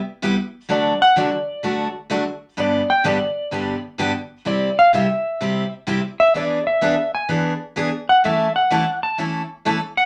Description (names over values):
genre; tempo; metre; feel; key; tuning
country; 127 BPM; 4/4; swing 67% on 8ths; G major; A4 = 440 Hz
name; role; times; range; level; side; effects
clean lap steel guitar; melody; 0.0-10.1 s; D5 to A5; -20 LUFS; equal; none
picked steel-string acoustic guitar; accompaniment; 0.2-9.8 s; G2 to A4; -23 LUFS; equal; none
room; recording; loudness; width
wet studio ambience, RT60 0.5 s; none; -20 LUFS; mono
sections
0.0-10.1 A section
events
electric slide guitar solo 0.0-10.1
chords
0.0 Cmaj7; 0.7 D; 2.6 G; 4.5 C; 6.3 E7; 8.2 A/E